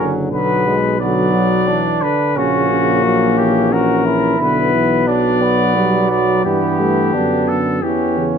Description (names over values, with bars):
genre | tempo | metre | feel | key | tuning
classical, brass quintet | 88 BPM | 3/4 | straight | B minor | A4 = 438 Hz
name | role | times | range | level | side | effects
warm cornet | melody | 0.0-8.3 s | F#4 to D5 | -19 LUFS | left 5 dB | none
warm flugelhorn | second line | 0.0-8.4 s | B3 to F#4 | -20 LUFS | right 7 dB | none
clear French horn | accompaniment | 0.0-8.4 s | F#3 to C#4 | -20 LUFS | left 5 dB | none
warm trombone | accompaniment | 0.0-8.4 s | C#3 to G3 | -22 LUFS | right 3 dB | none
warm tuba | bass | 0.0-8.4 s | F#1 to G2 | -20 LUFS | right 3 dB | none
room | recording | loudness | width
light reverb | close, detailed microphones | -13 LUFS | side -7 dB against mid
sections
0.0-8.4 A section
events
none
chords
0.3 Bm; 2.4 F#7/A#; 4.4 Bm; 6.5 G; 7.8 C#dim/E